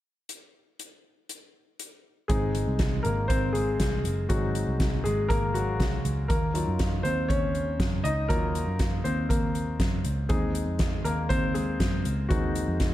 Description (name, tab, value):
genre	piano-driven pop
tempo	120 BPM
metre	4/4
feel	straight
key	Ab mixolydian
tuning	A4 = 440 Hz
part	soft-mallet drum kit	drums	0.3-12.9 s	hi-hat, kick drum, snare drum	-29 LUFS	equal	none
part	clear baby grand piano	accompaniment	2.3-12.9 s	Eb3 to Eb5	-29 LUFS	left 2 dB	none
part	vintage muted picked electric bass	bass	2.3-12.9 s	Gb1 to Gb2	-29 LUFS	equal	none
room	light reverb, small room reverb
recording	dark, warm production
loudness	-24 LUFS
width	side -14 dB against mid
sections	0.3-2.3 A section; 2.3-12.9 B section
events	grand piano solo 2.3-12.9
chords	0.3 N.C.; 2.3 Ab; 6.3 Ebmadd9; 10.3 Ab